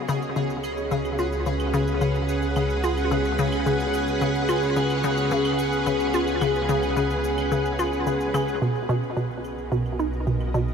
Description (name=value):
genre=ambient, sequencer-driven space music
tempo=109 BPM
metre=4/4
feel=straight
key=unclear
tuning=A4 = 440 Hz
part: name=string machine, full ensemble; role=sustained chords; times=0.0-10.7 s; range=B3 to F#5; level=-25 LUFS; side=equal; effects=ensemble chorus
part: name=analog drone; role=bass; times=0.6-10.7 s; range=B1 to C#2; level=-30 LUFS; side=equal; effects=chorus
part: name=pulsing gated texture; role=texture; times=0.0-8.6 s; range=G#4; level=-33 LUFS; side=right 4 dB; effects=chorus, built-in reverb
part: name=resonant blip pluck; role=riff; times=0.1-10.7 s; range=B2 to E#4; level=-26 LUFS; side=left 2 dB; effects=analog chorus, analog delay
part: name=cabasa and claves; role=percussion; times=0.1-10.7 s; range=none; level=-42 LUFS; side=right 5 dB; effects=analog delay
room=wet huge ambient reverb, RT60 7.6 s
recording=none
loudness=-22 LUFS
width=side -6 dB against mid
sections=0.0-8.6 A section; 8.6-10.7 B section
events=fade-in on string machine 0.0-8.6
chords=0.0 C#7sus4; 8.6 Bmaj7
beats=0.36 0.91 1.46 | 2.01 2.56 3.11 3.66 | 4.21 4.76 5.32 5.87 | 6.42 6.97 7.52 8.07 | 8.62 9.17 9.72 10.27